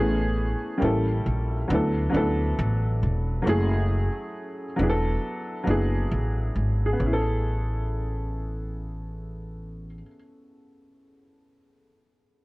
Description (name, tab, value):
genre	hip hop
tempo	68 BPM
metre	4/4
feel	swing 60% on 16ths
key	A major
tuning	A4 = 438 Hz
part	dark upright piano	accompaniment	0.0-12.4 s	E3 to A4	-26 LUFS	equal	low-pass filter
part	upright bass	bass	0.0-10.0 s	E1 to D2	-25 LUFS	equal	none
room	light reverb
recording	worn, warbling old tape, cassette tape, warbly pitch drift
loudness	-23 LUFS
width	side -22 dB against mid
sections	0.0-7.0 A section; 7.0-10.5 B section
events	none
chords	0.0 Amaj9; 0.8 A7b9; 1.7 D69; 3.5 F#m9; 4.8 E9sus4; 7.0 Amaj9